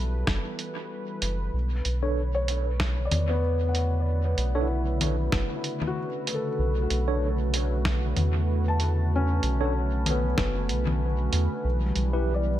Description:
ambient dub; 95 BPM; 4/4; swing 56% on 16ths; B minor; A4 = 440 Hz
warm analog pad; sustained chords; 0.0-12.6 s; C#3 to B4; -33 LUFS; right 2 dB; chorus
felt-muted upright piano; arpeggios; 0.0-12.6 s; B3 to A5; -32 LUFS; left 2 dB; low-pass filter, tape echo
soft dub sub bass; bass; 0.0-12.6 s; F#1 to E2; -26 LUFS; equal
electronic kick drum; drums; 0.3-10.5 s; -30 LUFS; equal
lo-fi sampler-style drum kit; drums; 0.3-12.1 s; congas, hi-hat, snare drum; -31 LUFS; left 1 dB; dub echo
mellow tine electric piano; stabs; 2.0-12.3 s; D4 to C#5; -33 LUFS; right 2 dB; medium stereo tremolo, dub echo
light reverb, digital ambience; -24 LUFS; side -12 dB against mid
0.0-12.6 A section
fade-in on analog synth pad 0.0-12.6; filter sweep on felt piano 0.0-12.6
0.0 Em; 1.5 Bm9; 11.6 Em
0.27 0.91 | 1.54 2.17 2.80 3.43 | 4.06 4.70 5.33 5.96 | 6.59 7.22 7.85 8.48 | 9.12 9.75 10.38 11.01 | 11.64 12.27

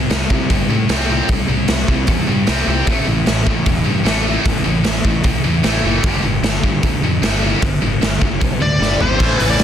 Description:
hard rock; 152 BPM; 4/4; straight; A4 = 440 Hz
heavy high-gain guitar; riff; 0.0-9.6 s; G2 to C4; -21 LUFS; left 11 dB; distortion
high-gain distorted guitar; riff; 0.0-9.6 s; G2 to C4; -22 LUFS; right 12 dB; distortion
fuzz fingered electric bass; bass; 0.0-9.6 s; E1 to C3; -21 LUFS; equal; overdrive
raw garage drum kit; drums; 0.1-9.6 s; crash cymbal, hi-hat, kick drum, snare drum, toms; -17 LUFS; equal
biting lead guitar; melody; 8.6-9.6 s; C5 to D5; -18 LUFS; left 3 dB; overdrive
tight distorted guitar; riff; 9.2-9.6 s; A2 to A3; -23 LUFS; equal; distortion
light reverb, studio reverb; dense, heavily limited modern master; -14 LUFS; side -9 dB against mid
0.0-9.2 A section
drum fill 8.8-9.2
0.0 C5; 2.9 A5; 6.0 G5
0.10 0.50 0.89 | 1.29 1.69 2.08 2.48 | 2.87 3.27 3.67 4.06 | 4.46 4.85 5.25 5.64 | 6.04 6.44 6.83 7.23 | 7.62 8.02 8.41 8.81 | 9.20 9.60

